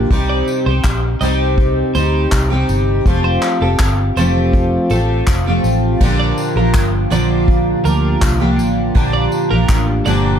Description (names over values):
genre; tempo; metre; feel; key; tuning
acoustic pop; 81 BPM; 4/4; straight; Bb major; A4 = 440 Hz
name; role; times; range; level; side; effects
fingerpicked twelve-string acoustic guitar; accompaniment; 0.0-10.4 s; Bb2 to G4; -16 LUFS; equal; double-tracked left and right
vintage muted fingered electric bass; bass; 0.0-10.4 s; F1 to D2; -17 LUFS; equal; none
unplugged drum kit; drums; 0.1-10.2 s; crash cymbal, handclaps, kick drum, tambourine; -18 LUFS; equal; none
tambourine; percussion; 0.1-10.2 s; none; -38 LUFS; left 10 dB; none
twelve-string electric guitar; arpeggios; 0.3-10.2 s; A4 to Eb5; -24 LUFS; right 5 dB; lush chorus
room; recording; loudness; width
light reverb; dark, warm production; -13 LUFS; side -8 dB against mid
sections
0.0-6.0 A section; 6.0-10.4 A section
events
none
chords
0.1 Cm; 3.1 Fadd9; 6.0 Bb6; 9.0 Gm7